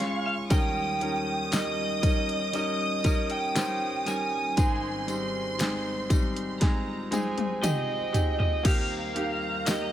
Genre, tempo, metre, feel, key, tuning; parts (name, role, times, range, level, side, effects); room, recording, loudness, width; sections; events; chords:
pop ballad; 59 BPM; 4/4; straight; Ab major; A4 = 436 Hz
lead guitar through a small cranked amp; melody; 0.0-9.9 s; Eb5 to Ab5; -30 LUFS; right 2 dB; overdrive
bright studio violin section; second line; 0.0-9.9 s; G5 to Eb6; -36 LUFS; equal
clear concert grand piano; accompaniment; 0.0-9.9 s; Ab1 to Db5; -31 LUFS; equal
glass harmonica; sustained chords; 0.0-9.9 s; G3 to C5; -37 LUFS; left 2 dB
pop drum kit; drums; 0.0-9.9 s; crash cymbal, hi-hat, kick drum, snare drum, toms; -26 LUFS; equal
tambourine; percussion; 0.5-9.9 s; -40 LUFS; left 8 dB
light reverb, studio reverb; -25 LUFS; side -11 dB against mid
0.0-8.6 A section; 8.6-9.9 A section
drum fill 6.6-8.6
0.0 Db; 0.5 Eb7; 4.6 Abmaj7; 8.6 Eb